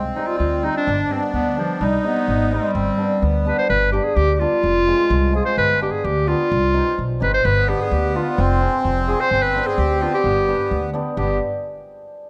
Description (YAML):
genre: klezmer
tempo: 128 BPM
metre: 2/4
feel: straight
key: G phrygian dominant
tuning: A4 = 440 Hz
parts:
  - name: accordion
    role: second line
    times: 0.0-3.7, 7.4-11.4 s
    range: B3 to Eb4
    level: -27 LUFS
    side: equal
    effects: light tremolo tuning
  - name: upright bass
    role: bass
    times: 0.0-11.4 s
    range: F1 to D2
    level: -24 LUFS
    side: equal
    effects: none
  - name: bright clarinet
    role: melody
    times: 0.2-11.4 s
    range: F3 to C5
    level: -22 LUFS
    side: equal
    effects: none
  - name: cimbalom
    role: accompaniment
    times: 0.2-11.4 s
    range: G3 to Ab4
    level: -27 LUFS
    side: equal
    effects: none
room: light reverb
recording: none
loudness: -19 LUFS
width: mono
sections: 0.0-3.7 A section; 3.7-11.2 B section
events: none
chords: 0.0 Cm; 0.9 G; 1.8 Cm; 2.8 G; 4.6 Fm; 5.6 G; 6.5 Cm; 7.4 G; 8.4 Fm; 9.3 G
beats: 0.40 | 0.87 1.34 | 1.81 2.29 | 2.76 3.23 | 3.70 4.17 | 4.64 5.11 | 5.57 6.04 | 6.51 6.98 | 7.44 7.91 | 8.38 8.84 | 9.31 9.78 | 10.24 10.71 | 11.18